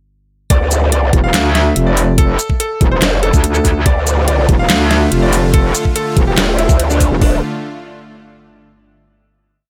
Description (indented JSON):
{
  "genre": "heavy wobble dubstep",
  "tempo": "143 BPM",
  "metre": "4/4",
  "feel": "half-time",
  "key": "D minor",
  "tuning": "A4 = 440 Hz",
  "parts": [
    { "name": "bright concert grand piano", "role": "melody", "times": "0.5-7.4 s", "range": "D4 to F5", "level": "-23 LUFS", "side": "equal", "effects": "diffuse ambient delay" },
    { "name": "growl bass", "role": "bass", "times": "0.5-7.4 s", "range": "D1 to D2", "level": "-16 LUFS", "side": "equal", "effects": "chorus, overdrive" },
    { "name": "dubstep drum kit", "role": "drums", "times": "0.5-7.3 s", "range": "hi-hat, kick drum", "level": "-15 LUFS", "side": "equal", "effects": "none" },
    { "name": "dubstep drum kit", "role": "drums", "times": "0.5-7.1 s", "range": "handclaps, hi-hat, shaker, snare drum", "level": "-19 LUFS", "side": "equal", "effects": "none" },
    { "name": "metallic wobble bass", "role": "bass", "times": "1.1-7.2 s", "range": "E1 to D2", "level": "-16 LUFS", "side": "equal", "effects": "chorus, overdrive" },
    { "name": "supersaw pad", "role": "sustained chords", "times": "3.9-7.4 s", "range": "D3 to F4", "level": "-24 LUFS", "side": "equal", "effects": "sidechain pumping" }
  ],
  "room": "light reverb, digital ambience",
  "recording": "faint mains hum",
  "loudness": "-13 LUFS",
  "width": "mono",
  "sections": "0.5-7.2 drop; 7.2-8.9 final chord",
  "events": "drop 0.5-7.2",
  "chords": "0.5 Dm",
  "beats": "| 0.50 0.92 1.34 1.76 | 2.18 2.60 3.02 3.44 | 3.86 4.28 4.70 5.12 | 5.54 5.96 6.38 6.79 | 7.21"
}